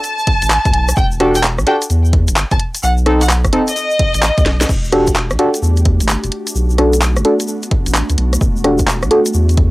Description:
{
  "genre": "UK garage, two-step garage",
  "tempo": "129 BPM",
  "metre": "4/4",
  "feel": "swing 65% on 16ths",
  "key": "E minor",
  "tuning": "A4 = 436 Hz",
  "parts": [
    { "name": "warm studio violin section", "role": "melody", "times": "0.0-4.6 s", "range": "D#5 to A5", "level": "-18 LUFS", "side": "equal", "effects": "none" },
    { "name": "garage drum kit", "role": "drums", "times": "0.0-9.7 s", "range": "crash cymbal, handclaps, hi-hat, rim click, snare drum", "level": "-18 LUFS", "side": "equal", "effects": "overdrive, cassette tape" },
    { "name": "egg shaker", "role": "percussion", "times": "0.0-9.6 s", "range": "none", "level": "-26 LUFS", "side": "left 2 dB", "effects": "none" },
    { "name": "electronic kick drum", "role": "drums", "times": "0.3-9.7 s", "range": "none", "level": "-16 LUFS", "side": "equal", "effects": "cassette tape" },
    { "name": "saturated sub bass", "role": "bass", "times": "0.4-9.7 s", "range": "E1 to E2", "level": "-15 LUFS", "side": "equal", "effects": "sidechain pumping" },
    { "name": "deep mellow chord stab", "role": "stabs", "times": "1.2-9.2 s", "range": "C4 to A4", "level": "-15 LUFS", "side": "equal", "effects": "chorus, cassette tape, tape echo" },
    { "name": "ethereal airy pad", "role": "sustained chords", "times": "5.4-9.7 s", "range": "G3 to G4", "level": "-24 LUFS", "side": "equal", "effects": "ensemble chorus, built-in reverb, sidechain pumping, cassette tape" }
  ],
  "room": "light reverb",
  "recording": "home recording on cassette",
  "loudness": "-12 LUFS",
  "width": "side -20 dB against mid",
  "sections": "0.0-4.7 A section; 4.7-9.7 B section",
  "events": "drop 0.0-4.7; drum fill 4.5; band accent 4.6",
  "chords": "0.0 Bm7; 1.0 Em11; 2.8 B7b9; 4.7 Em11; 6.3 Bm7; 8.4 Em11"
}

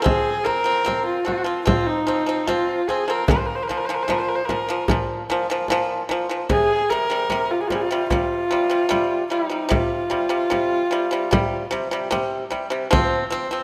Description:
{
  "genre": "mongolian traditional, Mongolian folk",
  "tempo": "75 BPM",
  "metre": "4/4",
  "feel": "straight",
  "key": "F minor",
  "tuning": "A4 = 440 Hz",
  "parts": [
    { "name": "clear horsehead fiddle", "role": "melody", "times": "0.0-12.1 s", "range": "Eb4 to C5", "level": "-24 LUFS", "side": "equal", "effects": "none" },
    { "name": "pipa", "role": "arpeggios", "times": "0.0-13.6 s", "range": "Bb2 to C4", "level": "-26 LUFS", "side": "equal", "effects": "none" },
    { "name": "frame drum", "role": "percussion", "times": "0.1-13.4 s", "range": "none", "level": "-26 LUFS", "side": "equal", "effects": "none" }
  ],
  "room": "moderate lush hall reverb, RT60 2.4 s",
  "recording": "rough home demo mix",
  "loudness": "-22 LUFS",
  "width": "mono",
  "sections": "0.0-12.9 A section",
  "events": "none",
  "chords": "0.0 F5; 3.3 Bb5; 6.5 C5; 12.9 F5"
}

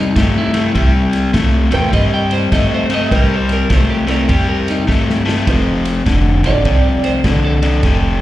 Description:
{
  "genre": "electric blues shuffle",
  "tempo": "102 BPM",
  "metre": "4/4",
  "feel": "swing 64% on 8ths",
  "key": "C mixolydian",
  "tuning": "A4 = 440 Hz",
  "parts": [
    { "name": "electric guitar at the edge of break-up", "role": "second line", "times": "0.0-8.2 s", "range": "Eb4 to G5", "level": "-21 LUFS", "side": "right 4 dB", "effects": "tape echo, plate reverb, slapback echo" },
    { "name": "overdriven electric guitar", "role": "riff", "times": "0.0-8.2 s", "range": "F2 to A3", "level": "-16 LUFS", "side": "left 3 dB", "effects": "none" },
    { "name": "upright bass", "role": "bass", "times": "0.0-8.2 s", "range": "F1 to G2", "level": "-16 LUFS", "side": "equal", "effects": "none" },
    { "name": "warm soul drum kit", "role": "drums", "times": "0.2-8.0 s", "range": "kick drum, ride cymbal, snare drum", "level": "-20 LUFS", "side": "right 1 dB", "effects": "none" },
    { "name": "warm upright piano", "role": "accompaniment", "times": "1.7-6.7 s", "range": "C4 to Eb5", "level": "-24 LUFS", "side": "right 5 dB", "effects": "plate reverb, slapback echo" }
  ],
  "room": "light reverb",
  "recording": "live gig heard through the venue's PA, recital hall reverb",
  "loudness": "-12 LUFS",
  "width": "side -14 dB against mid",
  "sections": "0.0-8.2 A section",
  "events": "clean electric guitar solo 0.0-8.2; drum fill 4.9-5.5",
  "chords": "0.0 C7; 5.5 F7"
}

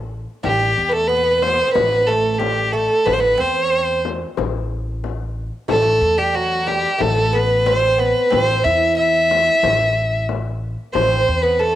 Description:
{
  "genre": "Arabic maqam ensemble",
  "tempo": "91 BPM",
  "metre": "4/4",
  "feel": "straight",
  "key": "A minor",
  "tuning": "A4 = 442 Hz",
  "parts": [
    { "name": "upright bass", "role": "bass", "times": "0.0-11.8 s", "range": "A1 to E2", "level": "-24 LUFS", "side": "equal", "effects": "none" },
    { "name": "bright violin", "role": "melody", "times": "0.4-11.8 s", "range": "F#4 to E5", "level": "-16 LUFS", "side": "equal", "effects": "cassette tape" },
    { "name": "oud", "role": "second line", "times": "0.4-11.8 s", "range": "F#3 to E4", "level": "-24 LUFS", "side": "right 8 dB", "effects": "none" },
    { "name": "frame drum", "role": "percussion", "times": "0.4-11.1 s", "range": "none", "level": "-27 LUFS", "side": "left 11 dB", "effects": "none" }
  ],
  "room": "light reverb, small room ambience",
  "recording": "home recording on cassette",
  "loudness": "-15 LUFS",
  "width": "side -12 dB against mid",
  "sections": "0.4-11.8 A section",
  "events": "none",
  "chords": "none"
}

